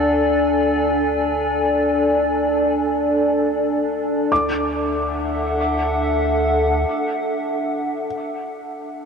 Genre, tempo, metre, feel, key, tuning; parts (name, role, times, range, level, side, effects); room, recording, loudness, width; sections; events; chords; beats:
ambient; free time; D lydian; A4 = 440 Hz
warbly tape-like pad; sustained chords; 0.0-8.5 s; D4 to G#5; -18 LUFS; equal; chorus, built-in reverb
warm sub bass; bass; 0.0-6.8 s; D2; -29 LUFS; left 1 dB
felt-muted upright piano; arpeggios; 4.3-9.1 s; D6; -26 LUFS; equal; tape echo
wet huge ambient reverb, RT60 8.9 s; in a vast, echoing space, cassette tape; -18 LUFS; side -6 dB against mid
0.0-4.3 A section; 4.3-7.7 B section
fade-out on sub bass 0.0-4.3
0.0 D5; 4.3 D
free time